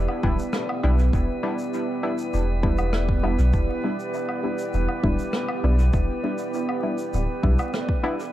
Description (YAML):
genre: ambient dub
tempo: 100 BPM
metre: 4/4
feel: straight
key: E minor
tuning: A4 = 443 Hz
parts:
  - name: deep dark ambient pad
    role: sustained chords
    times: 0.0-8.3 s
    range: B3 to D5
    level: -29 LUFS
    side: right 2 dB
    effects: chorus, built-in reverb
  - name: soft dub sub bass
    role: bass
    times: 0.0-7.6 s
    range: D1 to B1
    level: -21 LUFS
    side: equal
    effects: tube saturation
  - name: drifting glass-harmonics texture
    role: texture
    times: 0.0-8.3 s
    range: B4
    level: -34 LUFS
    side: right 1 dB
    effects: chorus, built-in reverb
  - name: woodblock, shaker and rim click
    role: drums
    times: 0.1-8.3 s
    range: none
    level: -34 LUFS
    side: equal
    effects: dub echo
  - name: filtered dub chord stab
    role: stabs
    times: 0.2-8.2 s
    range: G3 to E4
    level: -29 LUFS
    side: left 2 dB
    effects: chorus, dub echo
  - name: electronic kick drum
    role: drums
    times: 0.2-8.0 s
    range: none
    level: -24 LUFS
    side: equal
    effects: none
room: light reverb, small room ambience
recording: vinyl crackle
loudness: -21 LUFS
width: side -14 dB against mid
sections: 0.0-8.3 A section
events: none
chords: 0.0 Em7